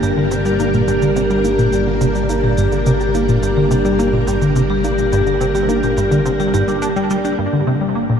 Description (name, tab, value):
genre	ambient, sequencer-driven space music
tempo	106 BPM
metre	4/4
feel	straight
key	G minor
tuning	A4 = 440 Hz
part	string machine, full ensemble	sustained chords	0.0-8.2 s	G3 to D5	-20 LUFS	equal	ensemble chorus, shimmer reverb
part	vibraphone with medium hard mallets	arpeggios	0.0-8.2 s	D4 to G5	-20 LUFS	left 1 dB	auto-pan, analog delay, shimmer reverb
part	tight sequenced synth	riff	0.0-8.2 s	G2 to D4	-17 LUFS	equal	chorus, analog delay
part	fat analog bass	bass	0.0-8.2 s	G1	-24 LUFS	equal	none
part	shaker and bongos	percussion	0.0-7.4 s	none	-32 LUFS	right 1 dB	analog delay
room	wet huge ambient reverb, RT60 7.9 s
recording	dark, warm production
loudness	-14 LUFS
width	side -7 dB against mid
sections	0.0-7.4 A section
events	none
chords	0.0 Gm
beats	0.03 | 0.60 1.16 1.73 2.29 | 2.86 3.43 3.99 4.56 | 5.12 5.69 6.26 6.82 | 7.39 7.96